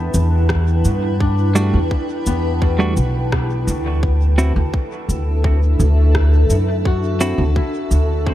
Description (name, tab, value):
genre	ambient dub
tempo	85 BPM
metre	4/4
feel	straight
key	E minor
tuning	A4 = 441 Hz
part	granular cloud pad	sustained chords	0.0-8.3 s	D4 to A5	-24 LUFS	equal	built-in reverb
part	Celtic harp	arpeggios	0.0-8.3 s	B3 to G5	-28 LUFS	left 5 dB	dub echo
part	upright bass	bass	0.0-8.3 s	B1 to G2	-16 LUFS	equal	none
part	electronic cabasa and rim click	drums	0.1-8.1 s	none	-28 LUFS	equal	dub echo
part	electronic kick drum	drums	0.5-8.3 s	none	-20 LUFS	equal	none
part	clean electric guitar	stabs	1.6-7.4 s	G3 to F#4	-25 LUFS	right 2 dB	dub echo
room	little or no reverb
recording	none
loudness	-15 LUFS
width	side -13 dB against mid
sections	0.0-8.3 A section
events	filter sweep on clean electric guitar 0.0-8.3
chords	0.0 Em11; 4.0 Dadd9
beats	0.50 | 1.21 1.91 2.62 3.32 | 4.03 4.73 5.44 6.15 | 6.85 7.56 8.26